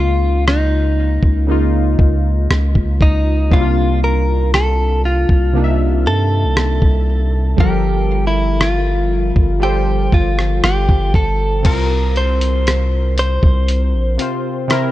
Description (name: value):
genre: contemporary R&B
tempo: 59 BPM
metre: 4/4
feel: straight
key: unclear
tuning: A4 = 440 Hz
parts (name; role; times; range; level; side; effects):
- direct-recorded clean electric guitar; melody; 0.0-14.9 s; Eb4 to C5; -20 LUFS; equal; ping-pong delay
- warm analog keys; accompaniment; 0.0-14.9 s; C3 to E5; -21 LUFS; left 1 dB; chorus
- long sustained 808-style bass; bass; 0.0-14.2 s; G1 to G2; -16 LUFS; equal; none
- dusty soul sampler-style drum kit; drums; 0.5-14.9 s; crash cymbal, hi-hat, kick drum, rim click; -15 LUFS; equal; vintage 12-bit sampler grit
room: digital ambience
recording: dark, warm production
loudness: -13 LUFS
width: side -15 dB against mid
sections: 0.0-11.7 A section; 11.7-14.9 B section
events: none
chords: 0.0 Db69; 3.5 C9sus4; 7.6 Gm9; 11.7 C7sus4